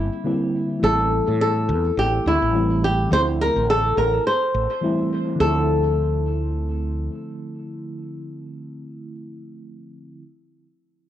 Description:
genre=sunset chillout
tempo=105 BPM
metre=4/4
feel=swing 57% on 16ths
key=D minor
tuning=A4 = 440 Hz
part: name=flamenco guitar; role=melody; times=0.0-9.1 s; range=E4 to C5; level=-21 LUFS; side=left 1 dB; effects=tape echo
part: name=mellow FM electric piano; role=accompaniment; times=0.0-10.2 s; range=D3 to E4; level=-26 LUFS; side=right 1 dB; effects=chorus, auto-pan, cassette tape, tape echo
part: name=mellow fretless electric bass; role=bass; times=0.0-7.1 s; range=A1 to A2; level=-23 LUFS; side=right 1 dB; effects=none
room=moderate studio reverb, RT60 0.5 s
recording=home recording on cassette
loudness=-18 LUFS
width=side -11 dB against mid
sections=0.0-5.4 A section; 5.4-7.7 B section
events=none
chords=0.0 C7; 0.8 Am7; 3.1 Dm9; 4.3 Am7; 5.4 Dm9

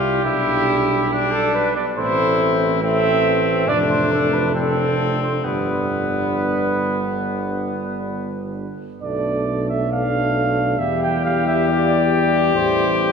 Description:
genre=classical, brass quintet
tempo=68 BPM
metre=4/4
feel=rubato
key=unclear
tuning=A4 = 440 Hz
part: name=bright trumpet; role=melody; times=0.0-13.1 s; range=B3 to G4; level=-22 LUFS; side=left 5 dB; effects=none
part: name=mellow trumpet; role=second line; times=0.0-13.1 s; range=G4 to G5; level=-23 LUFS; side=right 4 dB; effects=none
part: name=clear trombone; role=accompaniment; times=0.0-13.1 s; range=G3 to A3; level=-26 LUFS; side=left 1 dB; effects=none
part: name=warm French horn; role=accompaniment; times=0.0-13.1 s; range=C4 to E4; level=-26 LUFS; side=left 4 dB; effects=none
part: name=mellow tuba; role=bass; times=0.0-13.1 s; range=F1 to E2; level=-23 LUFS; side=right 2 dB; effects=none
room=wet church reverb, RT60 3.8 s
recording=minimal, uncompressed stereo recording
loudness=-17 LUFS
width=side -6 dB against mid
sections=0.0-13.1 A section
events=none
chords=0.2 G/B; 2.0 Am; 3.7 Dm/F; 5.4 G; 9.0 Bm7b5; 10.8 Em; 12.6 A5

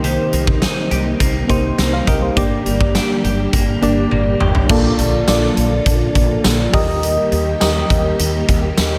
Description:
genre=1980s-style pop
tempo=103 BPM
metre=4/4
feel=straight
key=Bb major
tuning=A4 = 440 Hz
part: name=mellow FM electric piano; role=accompaniment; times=0.0-9.0 s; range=Bb3 to F5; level=-21 LUFS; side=equal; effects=chorus
part: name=soft string machine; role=sustained chords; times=0.0-9.0 s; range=C3 to A4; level=-26 LUFS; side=equal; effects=ensemble chorus
part: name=clean electric guitar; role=riff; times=0.0-5.3 s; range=Eb3 to G4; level=-27 LUFS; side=equal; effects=lush chorus, tape echo
part: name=woody fretless electric bass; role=bass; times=0.0-9.0 s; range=G1 to Eb2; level=-22 LUFS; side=equal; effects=ensemble chorus
part: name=huge arena drum kit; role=drums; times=0.0-8.9 s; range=crash cymbal, hi-hat, kick drum, snare drum, tambourine, toms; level=-20 LUFS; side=equal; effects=none
room=light reverb, small room ambience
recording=none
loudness=-16 LUFS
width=mono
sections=0.0-4.7 A section; 4.7-9.0 B section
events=drum fill 4.1-4.7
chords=0.0 Cm7; 2.4 Gm; 4.7 Bbmaj7; 6.7 Eb

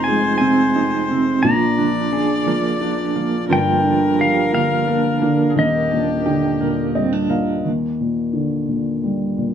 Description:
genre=acoustic folk-pop ballad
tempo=58 BPM (dotted quarters)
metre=6/8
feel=straight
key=Eb major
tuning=A4 = 443 Hz
part: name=pedal steel guitar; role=melody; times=0.0-7.3 s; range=Eb5 to Bb5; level=-22 LUFS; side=left 2 dB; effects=plate reverb
part: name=bright viola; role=second line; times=0.0-7.3 s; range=G4 to D5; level=-25 LUFS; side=left 4 dB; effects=none
part: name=felt-muted upright piano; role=accompaniment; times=0.0-9.5 s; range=Eb1 to F5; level=-19 LUFS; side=left 1 dB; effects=none
part: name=clean electric guitar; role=arpeggios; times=0.0-7.7 s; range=F3 to Ab4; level=-21 LUFS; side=right 6 dB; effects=tremolo
room=moderate studio reverb, RT60 0.6 s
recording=small room ambience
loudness=-16 LUFS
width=side -8 dB against mid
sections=0.0-7.6 A section; 7.6-9.5 B section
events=none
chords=0.0 Fm7; 1.4 Bb7; 3.5 Gm7; 5.6 Ebmaj7

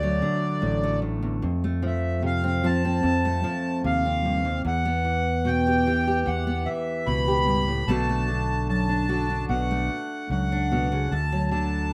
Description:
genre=acoustic folk duo or small band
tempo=74 BPM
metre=4/4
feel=straight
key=unclear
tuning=A4 = 440 Hz
part: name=accordion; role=melody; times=0.0-11.9 s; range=D5 to B5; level=-30 LUFS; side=equal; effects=none
part: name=fingerpicked steel-string acoustic guitar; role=accompaniment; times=0.0-11.9 s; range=D2 to G4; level=-28 LUFS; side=equal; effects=none
part: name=fingered electric bass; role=bass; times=0.0-11.9 s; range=A1 to F2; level=-30 LUFS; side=equal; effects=none
room=wet small room reverb, RT60 0.5 s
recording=rough home demo mix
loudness=-25 LUFS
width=mono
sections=0.0-11.9 A section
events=none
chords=0.0 D; 1.4 F; 4.7 Em; 7.9 Bm7; 11.1 D

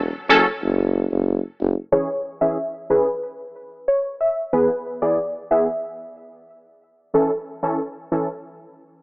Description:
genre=dancehall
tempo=92 BPM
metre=4/4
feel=straight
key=C# phrygian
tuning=A4 = 439 Hz
part: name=breathy tuba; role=bass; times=0.0-1.7 s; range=F#1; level=-20 LUFS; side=equal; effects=none
part: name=synth brass stab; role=accompaniment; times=0.3-8.3 s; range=E3 to A4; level=-19 LUFS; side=equal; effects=chorus
part: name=glassy wavetable pluck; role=melody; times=1.9-5.8 s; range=B4 to E5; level=-21 LUFS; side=equal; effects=chorus
room=light reverb, studio reverb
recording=low-pass filter, AM radio sound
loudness=-19 LUFS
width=side -28 dB against mid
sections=0.0-1.9 A section; 1.9-9.0 B section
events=none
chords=0.0 N.C.; 1.9 C#m; 4.5 E; 7.1 A

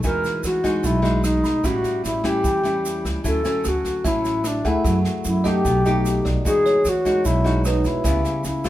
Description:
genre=bossa nova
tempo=150 BPM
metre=4/4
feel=straight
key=unclear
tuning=A4 = 440 Hz
part: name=nylon-string guitar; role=accompaniment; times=0.0-8.7 s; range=A2 to G#4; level=-24 LUFS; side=left 1 dB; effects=none
part: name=upright bass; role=bass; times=0.0-8.7 s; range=A1 to F#2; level=-24 LUFS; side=right 1 dB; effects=none
part: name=jazz brush drum kit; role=drums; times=0.0-8.7 s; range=kick drum, rim click, snare drum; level=-29 LUFS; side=equal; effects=none
part: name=tube shaker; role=percussion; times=0.0-8.7 s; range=none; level=-37 LUFS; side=right 5 dB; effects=none
part: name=bright reedy wooden-headed alto flute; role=melody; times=0.1-8.7 s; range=D4 to A#4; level=-22 LUFS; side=left 1 dB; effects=none
part: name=bell-like tine electric piano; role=accompaniment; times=1.4-8.2 s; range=B4 to B5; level=-31 LUFS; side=right 4 dB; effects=none
room=moderate large studio reverb, RT60 1.0 s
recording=band playing live in one room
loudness=-18 LUFS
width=side -14 dB against mid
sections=0.0-8.7 A section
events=none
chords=0.0 Emaj9; 1.6 A7; 3.2 Dmaj9; 4.8 F#m9; 5.6 B7alt; 6.4 Emaj9; 8.1 C#m7b5

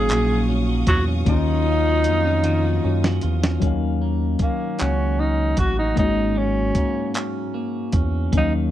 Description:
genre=slow six-eight R&B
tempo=51 BPM (dotted quarters)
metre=6/8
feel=straight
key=Eb minor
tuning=A4 = 441 Hz
part: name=breathy tenor saxophone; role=melody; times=0.0-8.5 s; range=Bb3 to Ab4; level=-23 LUFS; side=right 1 dB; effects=slapback echo
part: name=clean electric guitar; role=second line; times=0.0-8.7 s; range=Ab2 to Gb4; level=-28 LUFS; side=right 6 dB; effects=none
part: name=barky tine electric piano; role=accompaniment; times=0.0-8.7 s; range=Eb3 to F5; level=-25 LUFS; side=left 8 dB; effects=overdrive, wide subtle chorus
part: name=warm studio string section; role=sustained chords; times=0.0-3.6 s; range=Gb3 to Eb6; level=-35 LUFS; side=left 1 dB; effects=none
part: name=round analog bass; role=bass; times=0.0-8.7 s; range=Ab1 to Gb2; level=-22 LUFS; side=right 1 dB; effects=none
part: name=dusty soul sampler-style drum kit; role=drums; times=0.1-8.5 s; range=handclaps, hi-hat, kick drum, snare drum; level=-22 LUFS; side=right 1 dB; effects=none
room=digital ambience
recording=dry, close 1970s-style studio recording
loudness=-18 LUFS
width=side -12 dB against mid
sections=0.0-3.6 A section; 3.6-8.7 B section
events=drum fill 2.4-3.6; tenor saxophone solo 3.6-8.7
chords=0.0 Ebm9; 3.6 Ebm7; 6.0 Ab9sus4

